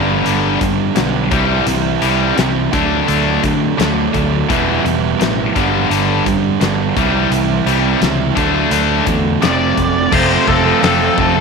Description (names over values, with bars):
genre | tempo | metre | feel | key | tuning
classic rock | 85 BPM | 4/4 | straight | G major | A4 = 439 Hz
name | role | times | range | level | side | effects
sludgy distorted guitar | riff | 0.0-11.4 s | F2 to E4 | -17 LUFS | right 12 dB | overdrive
tight distorted guitar | riff | 0.0-11.4 s | E2 to F4 | -17 LUFS | left 13 dB | distortion
fingered electric bass | bass | 0.0-11.4 s | E1 to D3 | -20 LUFS | equal | none
huge arena drum kit | drums | 0.3-11.3 s | crash cymbal, hi-hat, kick drum, snare drum | -21 LUFS | left 5 dB | none
octave-fuzz lead guitar | melody | 9.4-11.4 s | A4 to D5 | -17 LUFS | left 1 dB | wah, distortion
room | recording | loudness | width
light reverb, small room reverb | 1960s-style stereo with parts hard left and right | -12 LUFS | side -4 dB against mid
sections
0.0-10.1 A section; 10.1-11.4 B section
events
none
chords
0.0 G; 1.3 C; 2.7 D; 4.5 Em; 5.5 G; 7.0 C; 8.4 D; 9.4 F